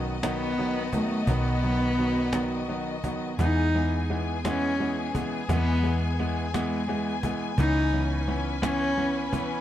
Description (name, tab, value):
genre	six-eight pop ballad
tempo	57 BPM (dotted quarters)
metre	6/8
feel	straight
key	E major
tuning	A4 = 440 Hz
part	clear grand piano	accompaniment	0.0-9.6 s	D#3 to C#4	-30 LUFS	right 1 dB	none
part	warm studio string section	sustained chords	0.0-9.6 s	B3 to G#5	-34 LUFS	left 4 dB	none
part	vintage muted fingered electric bass	bass	0.0-9.6 s	B1 to E2	-28 LUFS	equal	none
part	dark cello	melody	0.2-9.3 s	G#3 to D#4	-29 LUFS	left 1 dB	none
part	cajon	drums	0.2-9.5 s	none	-33 LUFS	equal	none
room	little or no reverb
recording	dry, close 1970s-style studio recording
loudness	-24 LUFS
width	side -12 dB against mid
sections	0.0-9.6 A section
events	none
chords	0.0 B; 3.4 E; 7.6 C#m7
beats	0.23 | 1.27 2.33 | 3.39 4.45 | 5.49 6.54 | 7.58 8.63